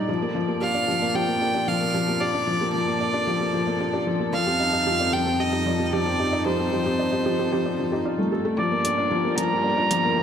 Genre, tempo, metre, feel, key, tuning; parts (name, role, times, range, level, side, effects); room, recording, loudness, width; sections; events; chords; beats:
piano and strings electronica; 113 BPM; 4/4; straight; A4 = 439 Hz
warm studio string section; sustained chords; 0.0-10.2 s; F2 to D5; -31 LUFS; equal
felt-muted upright piano; riff; 0.0-10.2 s; F3 to A4; -24 LUFS; left 2 dB
warbly dusty pluck; arpeggios; 0.1-10.2 s; G3 to D5; -32 LUFS; right 4 dB; chorus, digital delay
clear violin; melody; 0.6-10.2 s; C5 to Bb5; -25 LUFS; right 2 dB; low-pass filter
clear studio double bass section; bass; 8.6-10.2 s; G1; -32 LUFS; right 2 dB; high-pass filter
electronic hi-hat; drums; 8.8-10.0 s; -28 LUFS; right 1 dB; overdrive
moderate echo chamber reverb, RT60 1.8 s, studio reverb; -21 LUFS; side -8 dB against mid
0.0-8.6 A section; 8.6-10.2 B section
filter sweep on synth arpeggio sound 0.0-8.6; build-up 8.6-10.2
0.1 Bbmaj7; 4.3 F7; 8.6 Gm7
| 0.09 0.62 1.15 1.68 | 2.21 2.74 3.27 3.80 | 4.33 4.87 5.40 5.93 | 6.46 6.99 7.52 8.05 | 8.58 9.11 9.64 10.18